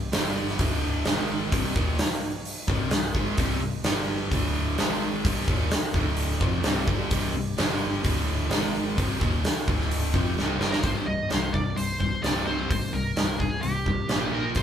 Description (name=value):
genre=hard rock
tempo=129 BPM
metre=4/4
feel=straight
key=C minor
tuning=A4 = 441 Hz
part: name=distorted electric guitar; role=riff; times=0.0-14.6 s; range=C2 to Bb3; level=-31 LUFS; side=left 5 dB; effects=distortion
part: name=overdriven semi-hollow guitar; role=riff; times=0.0-14.6 s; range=C2 to Bb3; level=-32 LUFS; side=right 6 dB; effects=spring reverb
part: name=picked electric bass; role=bass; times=0.0-14.6 s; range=C1 to Bb1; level=-32 LUFS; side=equal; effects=none
part: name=huge arena drum kit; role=drums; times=0.1-14.6 s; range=hi-hat, kick drum, snare drum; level=-26 LUFS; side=equal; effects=none
part: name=high-gain lead guitar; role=melody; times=10.6-14.6 s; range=G4 to Eb5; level=-31 LUFS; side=right 1 dB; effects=distortion
room=light reverb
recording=band playing live in one room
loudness=-23 LUFS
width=side -9 dB against mid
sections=0.0-10.8 A section; 10.8-14.6 B section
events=drum fill 10.4-10.8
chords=0.1 G5; 0.6 D5; 1.1 Ab5; 1.5 Cm; 3.8 G5; 4.3 D5; 4.8 Ab5; 5.2 Cm; 5.9 D5; 6.4 C5; 7.6 G5; 8.0 D5; 8.5 Ab5; 9.0 Cm; 9.7 D5; 10.1 C5; 14.1 Bb5